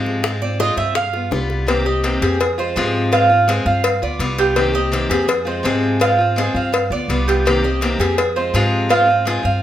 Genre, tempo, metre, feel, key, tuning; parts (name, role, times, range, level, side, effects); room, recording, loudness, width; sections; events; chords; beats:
latin, Cuban son and guajira; 166 BPM; 4/4; straight; C minor; A4 = 440 Hz
picked steel-string acoustic guitar; accompaniment; 0.0-9.6 s; C3 to G4; -21 LUFS; left 2 dB
upright bass; bass; 0.0-9.6 s; C2 to Ab2; -22 LUFS; equal
bongos and cowbell; percussion; 0.1-9.4 s; -22 LUFS; left 3 dB
Cuban tres; arpeggios; 0.4-9.6 s; F4 to F5; -19 LUFS; right 3 dB
moderate large studio reverb, RT60 0.9 s; -15 LUFS; side -11 dB against mid
0.0-1.7 A section; 1.7-9.6 B section
Cuban tres solo 0.0-1.7
0.2 Ab6; 1.0 G7; 1.7 Cm7; 2.4 Fm; 3.1 Ab6; 3.8 G7; 4.6 Cm7; 5.3 Fm; 6.0 Ab6; 6.7 G7; 7.5 Cm7; 8.2 Fm; 8.9 Ab6
| 0.23 0.59 0.95 1.31 | 1.68 2.04 2.40 2.76 | 3.12 3.48 3.84 4.20 | 4.57 4.93 5.29 5.65 | 6.01 6.37 6.73 7.09 | 7.46 7.82 8.18 8.54 | 8.90 9.27